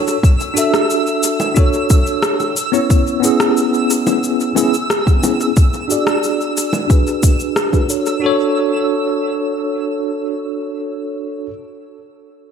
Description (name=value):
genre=sunset chillout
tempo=90 BPM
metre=4/4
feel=straight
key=unclear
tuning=A4 = 442 Hz
part: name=bell-like tine electric piano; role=accompaniment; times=0.0-11.5 s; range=B3 to E5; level=-17 LUFS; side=moving between left 3 dB and right 4 dB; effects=medium stereo tremolo, auto-pan, low-pass filter, dub echo
part: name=twinkling granular texture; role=texture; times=0.0-8.2 s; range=E6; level=-25 LUFS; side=right 2 dB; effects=built-in reverb
part: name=electronic shaker and rim click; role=drums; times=0.1-8.2 s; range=none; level=-21 LUFS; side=left 1 dB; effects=overdrive, dub echo
part: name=electronic kick drum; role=drums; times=0.2-7.9 s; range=none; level=-12 LUFS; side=equal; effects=overdrive
part: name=bongos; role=percussion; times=1.4-7.9 s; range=none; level=-26 LUFS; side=right 1 dB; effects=dub echo
room=light reverb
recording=echo-heavy mix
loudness=-14 LUFS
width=side -7 dB against mid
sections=0.0-8.2 A section; 8.2-10.9 B section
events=filter sweep on tine electric piano 0.0-8.2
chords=0.0 Dmaj9; 2.6 C#m7; 5.6 E7; 8.2 Dmaj7